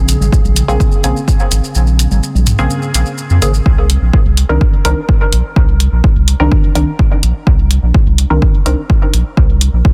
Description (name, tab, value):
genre	dub techno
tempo	126 BPM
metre	4/4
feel	straight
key	C phrygian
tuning	A4 = 444 Hz
part	warbly tape-like pad	sustained chords	0.0-3.6 s	Db3 to Ab4	-26 LUFS	equal	chorus, built-in reverb, sidechain pumping
part	warm sub bass	bass	0.0-9.8 s	Ab1 to F2	-14 LUFS	equal	sidechain pumping
part	electronic hi-hat	drums	0.1-9.7 s	none	-20 LUFS	equal	none
part	maracas	percussion	0.1-3.6 s	none	-25 LUFS	equal	none
part	electronic congas and toms	percussion	0.2-2.7 s	none	-24 LUFS	equal	sidechain pumping on perc, sidechain pumping on toms, dub echo
part	electronic kick drum	drums	0.3-9.9 s	none	-14 LUFS	equal	none
part	filtered dub chord stab	stabs	0.7-8.8 s	Db3 to Bb4	-22 LUFS	equal	chorus, phaser, sidechain pumping, dub echo
room	digital ambience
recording	dense, heavily limited modern master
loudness	-12 LUFS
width	mono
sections	0.0-3.7 A section; 3.7-9.9 A section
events	filter sweep on synth stab 0.0-3.7, 3.7-9.9; kick drops out 1.8-3.7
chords	0.0 Bbm9; 3.7 Cm9